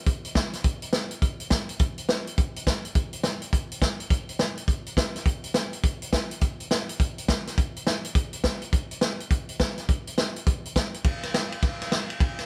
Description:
rock; 208 BPM; 4/4; swing 63% on 8ths
vintage drum kit; drums; 0.1-12.4 s; hi-hat, kick drum, ride cymbal, snare drum; -27 LUFS; equal
light reverb; band playing live in one room; -27 LUFS; mono
0.0-1.8 A section; 1.8-11.0 A section; 11.0-12.5 B section

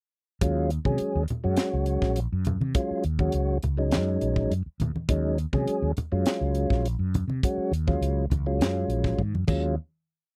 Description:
electric jazz fusion; 103 BPM; 4/4; straight; Eb dorian; A4 = 440 Hz
tonewheel organ; accompaniment; 0.4-9.8 s; Gb3 to Ab4; -29 LUFS; equal; slow rotary speaker
mellow fretless electric bass; bass; 0.4-9.8 s; Bb1 to C3; -29 LUFS; equal
tight funk drum kit; drums; 0.4-9.6 s; crash cymbal, hi-hat, kick drum, snare drum; -30 LUFS; equal
congas; percussion; 0.9-9.8 s; -34 LUFS; equal
light reverb; dry, close 1970s-style studio recording; -26 LUFS; mono
0.4-9.8 groove; 9.8-10.4 final hit
drum fill 9.0-9.8
0.4 Ebm11; 9.8 N.C.

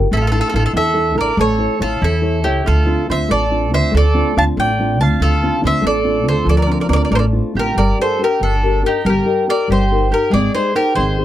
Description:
italian folk, Italian serenade; 94 BPM (dotted quarters); 6/8; straight; D minor, G minor from 7.8 s; A4 = 435 Hz
nylon-string guitar; accompaniment; 0.0-11.2 s; D3 to C#5; -19 LUFS; left 3 dB
upright bass; bass; 0.0-11.2 s; G1 to E2; -17 LUFS; equal
bowl-back mandolin; melody; 0.1-11.2 s; G4 to A5; -19 LUFS; equal
mandolin; second line; 0.1-11.2 s; D4 to F5; -22 LUFS; right 5 dB
little or no reverb; dry, close 1970s-style studio recording; -13 LUFS; side -12 dB against mid
0.0-7.8 A section; 7.8-11.2 B section
0.1 Asus4; 1.4 A; 2.6 Dm7; 7.8 Gm; 9.0 Eb/G; 10.3 Ab

